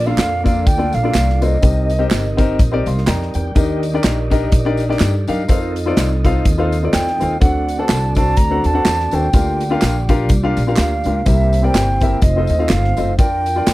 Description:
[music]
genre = uptempo gospel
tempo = 125 BPM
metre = 4/4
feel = swing 57% on 8ths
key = Bb major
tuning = A4 = 440 Hz
[part]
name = mellow alto ocarina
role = melody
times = 0.0-2.4, 6.9-13.7 s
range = Eb5 to Bb5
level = -20 LUFS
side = right 2 dB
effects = none
[part]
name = warm grand piano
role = accompaniment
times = 0.0-13.7 s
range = Bb2 to C6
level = -21 LUFS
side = left 4 dB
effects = none
[part]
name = mellow tonewheel organ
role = sustained chords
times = 0.0-13.7 s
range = A3 to G5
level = -25 LUFS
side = right 4 dB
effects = slow rotary speaker
[part]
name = upright bass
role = bass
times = 0.0-13.7 s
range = F1 to G2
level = -19 LUFS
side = equal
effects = none
[part]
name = modern studio drum kit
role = drums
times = 0.2-13.7 s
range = hi-hat, kick drum, snare drum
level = -16 LUFS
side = equal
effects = none
[part]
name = handclaps and tambourine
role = percussion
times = 0.2-13.7 s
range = none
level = -31 LUFS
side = right 3 dB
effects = none
[sound]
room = little or no reverb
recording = dry, close 1970s-style studio recording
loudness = -14 LUFS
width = side -17 dB against mid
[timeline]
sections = 0.0-13.7 A section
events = grand piano fill 2.6-3.6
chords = 0.0 Bbmaj7; 1.6 Cm7; 3.6 Ebmaj7; 5.5 F7; 7.4 D7; 9.3 Gm7; 11.3 C7; 12.2 F7; 13.2 Bb/F

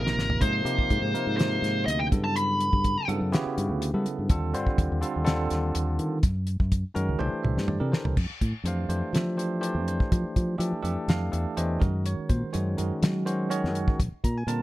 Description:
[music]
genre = electric jazz fusion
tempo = 124 BPM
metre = 4/4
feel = straight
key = unclear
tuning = A4 = 444 Hz
[part]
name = bluesy overdriven lead guitar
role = melody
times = 0.0-3.1 s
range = Bb4 to B5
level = -27 LUFS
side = equal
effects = distortion
[part]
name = bell-like tine electric piano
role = accompaniment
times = 0.0-14.6 s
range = C3 to Bb5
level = -30 LUFS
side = right 1 dB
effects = medium stereo tremolo
[part]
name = fingered electric bass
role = bass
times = 0.0-14.6 s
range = Ab1 to G3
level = -28 LUFS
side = equal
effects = none
[part]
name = damped 70s drum kit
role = drums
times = 0.1-14.6 s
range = crash cymbal, hi-hat, kick drum, snare drum, toms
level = -26 LUFS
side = equal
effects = none
[sound]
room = little or no reverb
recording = none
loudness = -24 LUFS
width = side -16 dB against mid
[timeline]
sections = 0.0-8.2 A section; 8.2-14.6 B section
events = drum fill 0.0-0.4, 7.2-8.2; tine electric piano fill 6.7-8.2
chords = 0.4 Abmaj9; 2.1 Gmaj9; 4.3 Ebmaj9; 6.2 Gbadd9; 7.2 C13; 8.2 Fmaj9; 11.8 Gbadd9; 14.0 Bbmaj9

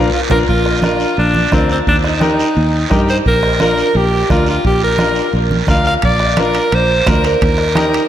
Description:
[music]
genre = latin, cumbia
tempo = 173 BPM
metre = 4/4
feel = straight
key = Bb major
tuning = A4 = 440 Hz
[part]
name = bright alto saxophone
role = melody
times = 0.0-8.1 s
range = C4 to F5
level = -16 LUFS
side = right 1 dB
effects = tape echo
[part]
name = bright upright piano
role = accompaniment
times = 0.0-8.0 s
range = D4 to Bb4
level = -19 LUFS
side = left 3 dB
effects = none
[part]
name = fingered electric bass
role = bass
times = 0.0-8.0 s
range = Bb1 to G2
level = -17 LUFS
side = equal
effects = none
[part]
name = bombo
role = percussion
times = 0.3-7.9 s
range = none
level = -20 LUFS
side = right 1 dB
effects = none
[part]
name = congas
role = percussion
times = 0.3-7.9 s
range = none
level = -23 LUFS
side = right 2 dB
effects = none
[part]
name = guiro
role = percussion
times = 0.3-8.1 s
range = none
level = -26 LUFS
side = right 6 dB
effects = none
[part]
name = timbales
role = percussion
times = 0.3-0.4, 6.0-8.1 s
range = none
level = -26 LUFS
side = right 5 dB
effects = none
[sound]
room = wet lush hall reverb, RT60 2.6 s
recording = dreamy mix soaked in reverb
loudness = -11 LUFS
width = side -11 dB against mid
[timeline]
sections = 0.5-8.1 A section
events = drum fill 0.0-0.5; band accent 0.0-0.5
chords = 0.5 Bb; 1.9 Eb; 3.3 Bb; 7.4 Eb

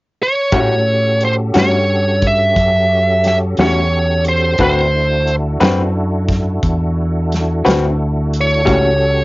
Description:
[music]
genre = slow blues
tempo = 59 BPM (dotted quarters)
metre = 12/8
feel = straight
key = A mixolydian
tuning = A4 = 442 Hz
[part]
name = smooth overdriven lead guitar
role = melody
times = 0.2-9.2 s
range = C5 to E5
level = -15 LUFS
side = right 1 dB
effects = cassette tape
[part]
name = electric guitar through a small old amp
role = accompaniment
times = 0.5-8.9 s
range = A2 to B4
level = -15 LUFS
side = left 2 dB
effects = tremolo, cassette tape
[part]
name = tonewheel organ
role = sustained chords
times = 0.5-9.2 s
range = C#4 to A4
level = -23 LUFS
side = equal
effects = slow rotary speaker, chorus vibrato, cassette tape
[part]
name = fingered electric bass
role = bass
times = 0.5-9.2 s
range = C#2 to A2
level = -17 LUFS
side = equal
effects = none
[part]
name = natural country drum kit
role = drums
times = 0.5-8.8 s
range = hi-hat, kick drum, snare drum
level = -19 LUFS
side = equal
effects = cassette tape
[sound]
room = light reverb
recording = home recording on cassette, nothing above 7.5 kHz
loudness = -12 LUFS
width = side -21 dB against mid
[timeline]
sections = 0.5-9.2 A section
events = none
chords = 0.0 N.C.; 0.5 A6; 4.6 D13; 8.7 A13

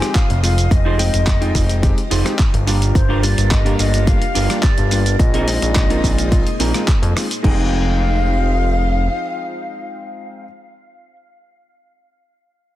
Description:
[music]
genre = nu-disco, nu disco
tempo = 107 BPM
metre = 4/4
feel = straight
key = F dorian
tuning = A4 = 440 Hz
[part]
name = mellow hollow silver concert flute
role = melody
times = 0.0-10.4 s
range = C5 to Ab5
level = -25 LUFS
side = left 2 dB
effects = dub echo
[part]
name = clear electric grand piano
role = accompaniment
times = 0.0-10.5 s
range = G3 to G5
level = -26 LUFS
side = left 2 dB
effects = sidechain pumping, ping-pong delay
[part]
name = string machine, full ensemble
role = sustained chords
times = 0.0-10.4 s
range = G3 to F5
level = -29 LUFS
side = equal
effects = ensemble chorus, sidechain pumping
[part]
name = semi-hollow electric guitar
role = riff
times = 0.0-11.2 s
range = C4 to Eb5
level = -26 LUFS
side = right 4 dB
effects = analog chorus, ping-pong delay
[part]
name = dusty soul sampler-style drum kit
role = drums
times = 0.0-7.6 s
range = crash cymbal, handclaps, hi-hat, rim click, shaker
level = -24 LUFS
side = equal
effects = none
[part]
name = electronic kick drum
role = drums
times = 0.2-7.6 s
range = none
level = -16 LUFS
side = equal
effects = none
[part]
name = fat analog bass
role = bass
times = 0.3-9.1 s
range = F1 to F2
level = -17 LUFS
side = equal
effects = none
[sound]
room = digital ambience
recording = dense, heavily limited modern master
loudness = -14 LUFS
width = side -14 dB against mid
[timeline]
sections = 0.0-7.4 A section; 7.4-9.7 B section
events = drop 0.0-7.4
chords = 0.0 Fm7; 2.7 Gm7; 5.2 Bb9sus4; 7.4 Fm7

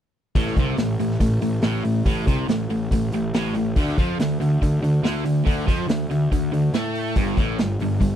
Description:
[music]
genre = blues rock power trio and southern rock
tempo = 141 BPM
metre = 4/4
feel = straight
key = unclear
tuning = A4 = 444 Hz
[part]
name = distorted electric guitar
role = riff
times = 0.4-8.2 s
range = G2 to A3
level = -22 LUFS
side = equal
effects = distortion
[part]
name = fuzz picked electric bass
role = bass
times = 0.4-8.2 s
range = G1 to A2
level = -27 LUFS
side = equal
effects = overdrive
[part]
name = vintage drum kit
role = drums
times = 0.4-8.1 s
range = hi-hat, kick drum, snare drum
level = -23 LUFS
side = equal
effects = none
[sound]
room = little or no reverb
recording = none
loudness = -19 LUFS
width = side -10 dB against mid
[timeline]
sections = 0.3-8.2 A section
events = none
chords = 0.3 Am; 3.8 D5; 7.2 G5

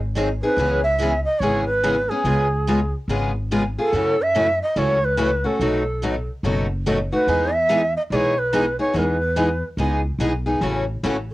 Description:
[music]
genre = acoustic string swing (jazz manouche)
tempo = 143 BPM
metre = 4/4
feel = swing 63% on 8ths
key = E major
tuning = A4 = 440 Hz
[part]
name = upright bass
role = bass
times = 0.0-11.3 s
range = F#1 to F#2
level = -25 LUFS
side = equal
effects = none
[part]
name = picked steel-string acoustic guitar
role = accompaniment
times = 0.1-11.2 s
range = B2 to A4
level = -27 LUFS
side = right 3 dB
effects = cassette tape
[part]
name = picked steel-string acoustic guitar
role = accompaniment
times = 0.2-11.2 s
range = B2 to G#4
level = -23 LUFS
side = left 2 dB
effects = cassette tape
[part]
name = breathy bright long shakuhachi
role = melody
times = 0.4-11.3 s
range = G#4 to E5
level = -21 LUFS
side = right 1 dB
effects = cassette tape
[sound]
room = light reverb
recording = home recording on cassette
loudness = -18 LUFS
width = side -17 dB against mid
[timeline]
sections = 0.0-10.6 A section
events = none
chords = 0.0 G#7; 0.6 C#m7; 2.2 C#7; 3.9 F#m7; 5.6 B7; 7.3 Emaj7; 10.6 A6

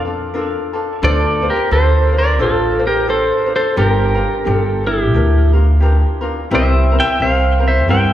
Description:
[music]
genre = Hawaiian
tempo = 87 BPM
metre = 4/4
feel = swing 58% on 8ths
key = unclear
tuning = A4 = 443 Hz
[part]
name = pedal steel guitar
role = melody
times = 0.0-8.1 s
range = E4 to G5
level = -16 LUFS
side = right 1 dB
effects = tape echo
[part]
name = ukulele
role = accompaniment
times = 0.0-8.1 s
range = C4 to C5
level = -20 LUFS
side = left 2 dB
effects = none
[part]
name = upright bass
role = bass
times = 0.0-8.1 s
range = G1 to G2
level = -15 LUFS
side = equal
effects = none
[sound]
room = wet large studio reverb, RT60 1.5 s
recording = band playing live in one room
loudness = -12 LUFS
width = side -12 dB against mid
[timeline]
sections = 0.0-8.1 A section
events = none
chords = 0.0 Bbmaj7; 1.0 Dm7; 3.8 Gm7; 6.5 C7

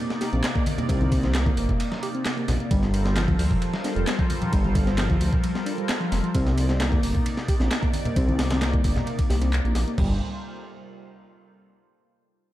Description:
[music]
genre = breakbeat, breaks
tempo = 132 BPM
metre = 4/4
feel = straight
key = G minor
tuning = A4 = 439 Hz
[part]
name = phased analog pad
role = sustained chords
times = 0.0-10.2 s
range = C3 to D5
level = -31 LUFS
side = left 1 dB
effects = phaser, chorus, sidechain pumping
[part]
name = mellow reed electric piano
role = riff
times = 0.0-10.2 s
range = F3 to G4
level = -28 LUFS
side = right 1 dB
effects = fast tremolo, overdrive, vintage 12-bit sampler grit, digital delay
[part]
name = breakbeat sampler-style drum kit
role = drums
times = 0.1-10.1 s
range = crash cymbal, hi-hat, kick drum, ride cymbal, snare drum, toms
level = -25 LUFS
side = equal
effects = none
[part]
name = punchy analog drum machine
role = drums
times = 0.1-10.0 s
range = handclaps, hi-hat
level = -35 LUFS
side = equal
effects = none
[part]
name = dark detuned saw bass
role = bass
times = 0.3-10.2 s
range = F1 to D2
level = -24 LUFS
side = equal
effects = none
[part]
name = congas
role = percussion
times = 0.7-9.1 s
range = none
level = -32 LUFS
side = left 2 dB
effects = none
[sound]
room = light reverb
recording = dark, warm production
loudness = -21 LUFS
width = side -14 dB against mid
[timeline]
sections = 0.0-10.0 A section; 10.0-11.8 B section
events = drop 0.0-10.0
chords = 0.0 Cm9; 2.7 Gm11; 6.3 Cm9; 10.0 Gm11

